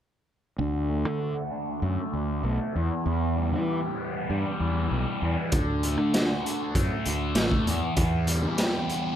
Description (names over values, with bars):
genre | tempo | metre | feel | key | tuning
psychedelic rock | 98 BPM | 4/4 | straight | unclear | A4 = 440 Hz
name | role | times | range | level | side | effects
fuzz guitar | riff | 0.6-9.2 s | E2 to G4 | -28 LUFS | equal | distortion, phaser, low-pass filter
fuzz fingered electric bass | bass | 0.6-8.7 s | A1 to E3 | -28 LUFS | equal | overdrive
raw garage drum kit | drums | 5.5-9.0 s | hi-hat, kick drum, snare drum | -27 LUFS | equal | none
room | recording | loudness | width
light reverb | none | -24 LUFS | side -10 dB against mid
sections
0.6-9.2 A section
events
filter sweep on distorted electric guitar 0.6-9.2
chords
0.6 D; 2.8 Em; 5.5 D; 7.7 Em